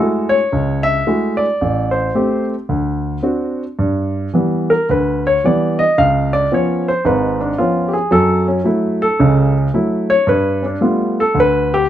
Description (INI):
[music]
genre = solo jazz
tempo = 111 BPM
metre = 4/4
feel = swing 67% on 8ths, rubato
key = F# minor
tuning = A4 = 436 Hz
[part]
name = warm baby grand piano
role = solo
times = 0.0-11.8 s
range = G#1 to E#5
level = -14 LUFS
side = equal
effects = none
[sound]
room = light reverb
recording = none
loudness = -14 LUFS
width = side -11 dB against mid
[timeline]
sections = 0.0-3.8 A section; 3.8-11.9 B section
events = grand piano solo 3.8-11.9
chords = 0.0 F#m9; 1.6 Am7; 2.7 D7; 3.8 G6; 6.0 C#7; 8.1 F#m7; 10.3 G9